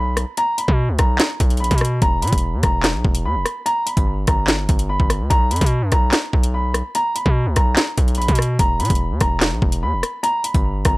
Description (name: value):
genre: hip hop, drill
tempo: 146 BPM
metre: 4/4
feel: half-time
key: unclear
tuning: A4 = 440 Hz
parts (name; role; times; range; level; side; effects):
- dark concert grand piano; melody; 0.0-11.0 s; A#5 to B5; -23 LUFS; equal; low-pass filter, tape echo
- distorted 808-style bass; bass; 0.0-11.0 s; E1 to B2; -20 LUFS; equal; distortion
- drill drum kit; drums; 0.2-10.9 s; handclaps, hi-hat, kick drum, rim click, snare drum; -18 LUFS; equal; none
room: little or no reverb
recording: dry, gritty hardware recording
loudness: -16 LUFS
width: side -22 dB against mid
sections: 0.0-11.0 A section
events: none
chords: 0.0 B5; 2.0 E5; 3.7 G; 5.3 B5; 8.6 E5; 10.2 G